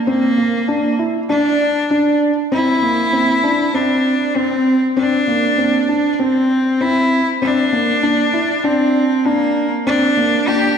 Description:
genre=electronica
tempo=98 BPM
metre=4/4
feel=straight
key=unclear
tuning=A4 = 440 Hz
part: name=clear cello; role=melody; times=0.1-10.8 s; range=Bb3 to G4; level=-17 LUFS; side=right 1 dB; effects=digital delay
part: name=felt-muted upright piano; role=riff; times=0.1-10.7 s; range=Bb3 to E4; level=-16 LUFS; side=equal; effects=digital delay
room=wet scoring stage reverb, RT60 1.8 s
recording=none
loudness=-14 LUFS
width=side -7 dB against mid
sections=0.0-10.8 A section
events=none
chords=0.0 Bb; 2.5 C; 7.4 Bbadd9

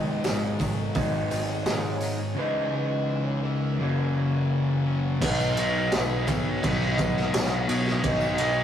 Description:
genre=rock, shoegaze and dream pop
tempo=85 BPM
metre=4/4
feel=straight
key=B major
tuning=A4 = 440 Hz
part: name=pure sine lead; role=melody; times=0.0-8.6 s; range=G#4 to D#5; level=-36 LUFS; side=equal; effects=chorus
part: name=direct-recorded clean electric guitar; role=arpeggios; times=0.0-8.6 s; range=E3 to D#4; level=-41 LUFS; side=left 2 dB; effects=none
part: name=electric guitar through a small old amp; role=riff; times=0.0-8.6 s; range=F#2 to D#4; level=-30 LUFS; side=right 1 dB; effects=none
part: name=overdriven electric guitar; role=riff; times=0.0-8.6 s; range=F#2 to C#4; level=-36 LUFS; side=right 1 dB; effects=none
part: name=thick fuzz guitar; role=riff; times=0.0-8.6 s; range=F#2 to C#4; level=-28 LUFS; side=left 2 dB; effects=distortion
part: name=growling picked electric bass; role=bass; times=0.0-8.6 s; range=G#1 to B2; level=-31 LUFS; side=equal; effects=overdrive
part: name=raw garage drum kit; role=drums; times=0.2-8.5 s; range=crash cymbal, hi-hat, kick drum, ride cymbal, snare drum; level=-26 LUFS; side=right 1 dB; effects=none
part: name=tambourine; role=percussion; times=0.2-8.5 s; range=none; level=-47 LUFS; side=right 7 dB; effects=none
room=wet studio reverb, RT60 0.6 s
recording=rough rehearsal-room recording, tube saturation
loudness=-23 LUFS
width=side -9 dB against mid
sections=0.0-5.2 A section; 5.2-8.6 B section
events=none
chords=0.0 G#m7; 2.4 C#madd9; 3.8 F#7; 5.2 B

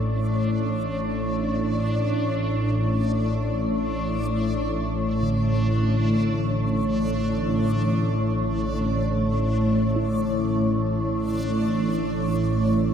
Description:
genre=dark ambient drone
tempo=free time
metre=none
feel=none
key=unclear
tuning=A4 = 440 Hz
part: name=organ-like drone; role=drone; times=0.0-12.9 s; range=A1 to A2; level=-22 LUFS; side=equal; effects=ensemble chorus, built-in reverb
part: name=backwards swelling texture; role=texture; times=0.0-12.9 s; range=D4 to D5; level=-33 LUFS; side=right 1 dB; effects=built-in reverb
part: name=bronze singing bowl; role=arpeggios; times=5.2-12.9 s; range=D3 to E4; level=-32 LUFS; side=left 1 dB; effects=tape echo
room=wet cathedral reverb, RT60 4.9 s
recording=in a vast, echoing space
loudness=-21 LUFS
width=side -8 dB against mid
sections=0.0-12.9 A section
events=fade-out on synth texture 0.0-12.9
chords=0.0 Asus4

